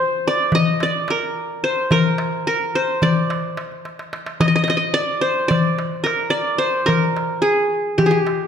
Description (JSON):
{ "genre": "Turkish makam ensemble", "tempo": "217 BPM (eighths)", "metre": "9/8", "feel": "straight", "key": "unclear", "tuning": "A4 = 440 Hz", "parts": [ { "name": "qanun", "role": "melody", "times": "0.0-8.5 s", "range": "G4 to Eb5", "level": "-18 LUFS", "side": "equal", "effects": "none" }, { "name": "darbuka", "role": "percussion", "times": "0.5-8.4 s", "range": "none", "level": "-21 LUFS", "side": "left 2 dB", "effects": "none" } ], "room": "wet recital hall reverb, RT60 1.5 s", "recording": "minimal, uncompressed stereo recording", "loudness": "-17 LUFS", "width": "side -8 dB against mid", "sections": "0.0-8.5 A section", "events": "drum fill 3.9-4.4", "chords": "none" }